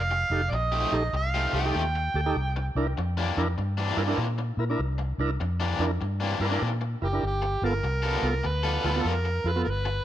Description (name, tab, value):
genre	electric blues shuffle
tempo	98 BPM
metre	4/4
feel	swing 65% on 8ths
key	C mixolydian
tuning	A4 = 441 Hz
part	overdriven harmonica	melody	0.0-2.7, 7.0-10.0 s	G4 to G5	-29 LUFS	right 2 dB	none
part	vintage muted fingered electric bass	bass	0.0-10.0 s	F1 to Bb2	-28 LUFS	equal	none
part	overdriven electric guitar	riff	0.1-9.9 s	C3 to A4	-31 LUFS	left 3 dB	tremolo
part	tonewheel organ	accompaniment	0.3-9.7 s	B3 to Bb4	-32 LUFS	right 3 dB	overdrive, slow rotary speaker
room	light reverb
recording	none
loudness	-24 LUFS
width	side -12 dB against mid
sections	0.0-10.0 A section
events	none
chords	0.0 F9; 2.4 C9; 7.2 G9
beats	0.52 1.14 1.75 | 2.36 2.97 3.58 4.19 | 4.80 5.41 6.02 6.63 | 7.24 7.84 8.45 9.06 | 9.67